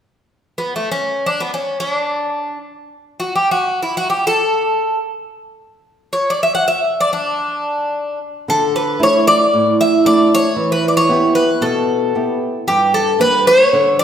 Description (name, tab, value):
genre	greek folk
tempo	free time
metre	none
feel	none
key	D major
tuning	A4 = 440 Hz
part	Greek bouzouki	melody	0.6-14.0 s	A3 to F#5	-15 LUFS	equal	none
part	flamenco guitar	accompaniment	8.5-14.0 s	G2 to G4	-17 LUFS	right 2 dB	none
room	wet recital hall reverb, RT60 1.6 s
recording	recorded in a church or concert hall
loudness	-14 LUFS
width	side -9 dB against mid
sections	0.1-8.5 A section; 8.5-14.0 B section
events	none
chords	0.1 N.C.; 8.5 Dsus2; 10.6 Em; 12.7 Gm